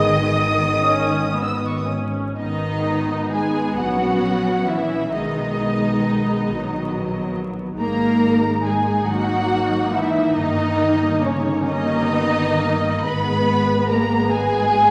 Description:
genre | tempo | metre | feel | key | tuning
classical, slow romantic movement for string orchestra | 37-49 BPM (dotted quarters) | 6/8 | rubato | G# minor | A4 = 440 Hz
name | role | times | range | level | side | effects
muted studio violin section | melody | 0.0-14.9 s | C#5 to E6 | -26 LUFS | equal | none
muted studio violin section | second line | 0.0-14.9 s | C#4 to D#5 | -27 LUFS | equal | none
muted studio viola section | accompaniment | 0.0-14.9 s | F#3 to G#4 | -25 LUFS | equal | none
muted studio double bass section | bass | 0.0-14.9 s | G1 to B1 | -29 LUFS | equal | none
muted symphonic cello section | bass | 0.0-14.9 s | C#3 to B3 | -27 LUFS | equal | none
room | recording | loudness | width
wet recital hall reverb, RT60 1.8 s | heard from further back in the room, vinyl crackle | -20 LUFS | mono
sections
0.0-2.4 A section; 2.4-14.9 B section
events
none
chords
0.0 G#m; 5.1 G#m/B; 7.8 G#5; 9.1 F#13/G#; 10.4 D#7/G; 13.1 G#m

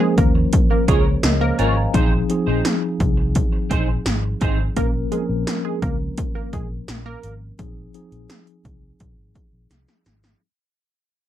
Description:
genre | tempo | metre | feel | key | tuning
1980s-style pop | 85 BPM | 4/4 | straight | unclear | A4 = 440 Hz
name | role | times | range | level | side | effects
mellow tine electric piano | accompaniment | 0.0-10.4 s | F3 to Bb5 | -24 LUFS | left 2 dB | medium stereo tremolo
clean electric guitar | riff | 0.0-4.6 s | C4 to Db5 | -27 LUFS | right 4 dB | analog chorus, slapback echo
funky polysynth comp | stabs | 0.0-7.3 s | Ab3 to Bb4 | -25 LUFS | right 6 dB | chorus
vintage muted fingered electric bass | bass | 0.2-10.3 s | Ab1 to Eb2 | -23 LUFS | equal | none
80s electronic pad drums | drums | 0.2-10.4 s | hi-hat, kick drum, snare drum | -20 LUFS | equal | none
room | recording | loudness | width
little or no reverb | dry, close 1970s-style studio recording | -17 LUFS | side -12 dB against mid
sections
0.0-10.4 A section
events
fade-out 0.0-10.4; drum fill 9.7-10.4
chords
0.0 Bbm; 1.9 Fm7/Bb; 4.8 Bbm; 7.6 Fm7/Bb

